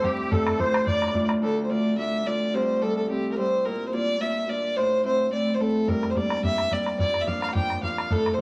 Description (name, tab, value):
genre	celtic folk, Celtic reel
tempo	215 BPM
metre	4/4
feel	swing 54% on 8ths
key	D minor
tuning	A4 = 439 Hz
part	warm fiddle	melody	0.0-8.4 s	G4 to G5	-28 LUFS	equal	none
part	musette accordion	second line	0.0-1.3 s	G4 to D5	-33 LUFS	equal	none
part	Celtic harp	accompaniment	0.0-8.4 s	C2 to F4	-30 LUFS	equal	none
part	bodhran	percussion	0.0-1.4, 5.9-8.4 s	none	-31 LUFS	equal	none
room	wet studio reverb, RT60 0.8 s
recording	vinyl crackle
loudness	-25 LUFS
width	mono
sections	0.0-1.4 A section; 1.4-8.4 B section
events	none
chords	0.3 Dm; 2.5 C; 3.7 Bb; 4.8 Am; 5.9 Gm; 7.0 Bb